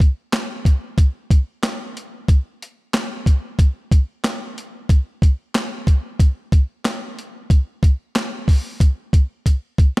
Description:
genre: hip hop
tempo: 92 BPM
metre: 4/4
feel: swing 57% on 16ths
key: none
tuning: none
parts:
  - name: boom bap sampler-style drum kit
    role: drums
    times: 0.0-10.0 s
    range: handclaps, hi-hat, kick drum, snare drum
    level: -15 LUFS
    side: equal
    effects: none
room: little or no reverb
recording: none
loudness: -17 LUFS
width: side -22 dB against mid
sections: 0.0-10.0 A section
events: drum fill 9.5-10.0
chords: none

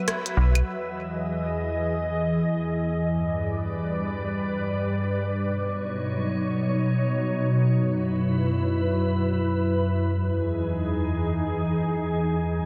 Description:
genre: IDM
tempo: free time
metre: none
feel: none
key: unclear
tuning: A4 = 442 Hz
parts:
  - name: glassy FM pad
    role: sustained chords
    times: 0.0-12.7 s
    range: E2 to E5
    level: -26 LUFS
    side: equal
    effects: ensemble chorus, built-in reverb
  - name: glitchy drum kit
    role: drums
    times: 0.1-0.6 s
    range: claves, hi-hat, rim click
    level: -33 LUFS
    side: equal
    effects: low-pass filter on hats, low-pass filter on perc, low-pass filter on snare, low-pass filter on room, dub echo
  - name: metallic FM bass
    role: bass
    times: 0.4-0.6 s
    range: B1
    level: -21 LUFS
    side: equal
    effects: none
room: moderate lush hall reverb, RT60 2.9 s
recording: dense, heavily limited modern master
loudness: -26 LUFS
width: mono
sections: 0.7-12.7 A section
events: band accent 0.1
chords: 0.0 F#7sus4; 0.7 Emaj7; 3.0 G; 5.4 Badd9; 7.7 F#7sus4; 10.1 Emaj7

